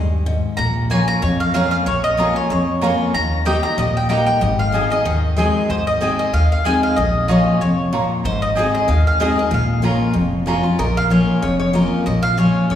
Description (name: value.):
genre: bluegrass.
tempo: 188 BPM.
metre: 4/4.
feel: swing 54% on 8ths.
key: Bb dorian.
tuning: A4 = 440 Hz.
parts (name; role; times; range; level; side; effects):
mandolin; melody; 0.0-12.7 s; C5 to Bb5; -21 LUFS; equal; none.
picked steel-string acoustic guitar; accompaniment; 0.0-12.8 s; F2 to Ab4; -18 LUFS; left 2 dB; none.
upright bass; bass; 0.0-12.8 s; F1 to F2; -22 LUFS; equal; none.
mandolin; stabs; 0.9-10.6 s; Bb3 to Bb5; -25 LUFS; right 3 dB; none.
lap resonator guitar; second line; 10.8-12.8 s; Bb4 to Db5; -25 LUFS; equal; none.
room: wet concert hall reverb, RT60 1.9 s.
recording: recorded in a church or concert hall, small room reverb.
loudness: -15 LUFS.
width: side -10 dB against mid.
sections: 0.0-10.8 A section; 10.8-12.8 B section.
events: mandolin solo 10.8-12.8.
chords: 0.0 Ab5; 0.6 Bbm; 3.1 Eb; 4.4 Ab; 7.0 Bbm; 8.2 Ab; 9.5 Bbm.